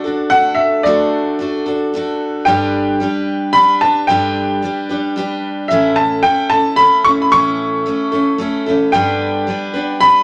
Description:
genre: country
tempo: 111 BPM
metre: 3/4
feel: straight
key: G lydian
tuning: A4 = 443 Hz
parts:
  - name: bright upright piano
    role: melody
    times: 0.0-10.2 s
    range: D5 to C#6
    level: -16 LUFS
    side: equal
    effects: none
  - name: picked steel-string acoustic guitar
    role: accompaniment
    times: 0.0-10.2 s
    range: G2 to B4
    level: -20 LUFS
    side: equal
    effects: none
room: moderate studio reverb, RT60 0.7 s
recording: none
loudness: -15 LUFS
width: mono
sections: 0.0-10.2 A section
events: none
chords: 0.0 D; 2.5 G; 5.7 A; 8.9 G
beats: 0.32 | 0.85 1.39 1.93 | 2.47 3.01 3.55 | 4.09 4.62 5.16 | 5.70 6.24 6.78 | 7.32 7.85 8.39 | 8.93 9.47 10.01

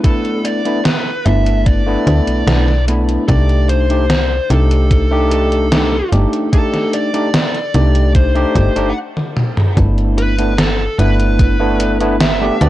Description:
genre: vaporwave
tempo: 74 BPM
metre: 4/4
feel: straight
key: G major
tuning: A4 = 440 Hz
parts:
  - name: dark smooth lead guitar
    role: melody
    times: 0.0-12.7 s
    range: A4 to F#5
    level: -20 LUFS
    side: left 1 dB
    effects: overdrive, tape echo
  - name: overdriven tine electric piano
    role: accompaniment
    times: 0.0-12.7 s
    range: A3 to G4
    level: -18 LUFS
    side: equal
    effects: analog chorus
  - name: electronic kick drum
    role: drums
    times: 0.0-11.6 s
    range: none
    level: -13 LUFS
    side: equal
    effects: overdrive
  - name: gated 80s digital drum machine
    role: drums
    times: 0.0-12.7 s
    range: hi-hat, snare drum, toms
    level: -18 LUFS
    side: equal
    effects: gated reverb, gated reverb snare, overdrive
  - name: slap-like FM bass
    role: bass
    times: 1.3-12.7 s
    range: G1 to D2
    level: -14 LUFS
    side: equal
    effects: none
room: digital ambience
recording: dry, gritty hardware recording, cassette tape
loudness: -12 LUFS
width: side -15 dB against mid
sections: 0.0-9.8 A section; 9.8-12.7 B section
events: stop 9.0-9.8; drum fill 9.2-9.8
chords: 0.0 G69; 3.3 Cm6; 9.8 G69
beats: | 0.04 0.85 1.67 2.48 | 3.29 4.10 4.91 5.72 | 6.53 7.34 8.15 8.96 | 9.77 10.59 11.39 12.21

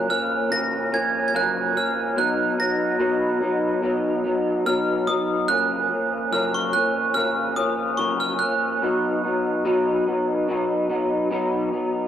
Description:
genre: indie pop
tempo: 72 BPM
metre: 4/4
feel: swing 55% on 16ths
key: unclear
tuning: A4 = 436 Hz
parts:
  - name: glockenspiel with brass mallets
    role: melody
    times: 0.0-11.3 s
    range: C#6 to A#6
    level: -24 LUFS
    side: right 2 dB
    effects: analog chorus, plate reverb
  - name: electric guitar through a small old amp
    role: accompaniment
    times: 0.0-12.1 s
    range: F#2 to D#4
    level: -22 LUFS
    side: left 1 dB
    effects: ensemble chorus, warbly pitch drift, plate reverb
room: wet studio ambience, RT60 0.5 s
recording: cassette tape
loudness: -20 LUFS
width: side -10 dB against mid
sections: 0.0-12.1 A section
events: none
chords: 0.0 F#maj7; 2.2 B; 5.5 F#maj7; 8.8 B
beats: 0.50 1.33 | 2.17 3.00 3.83 4.66 | 5.49 6.32 7.16 7.99 | 8.82 9.65 10.48 11.31

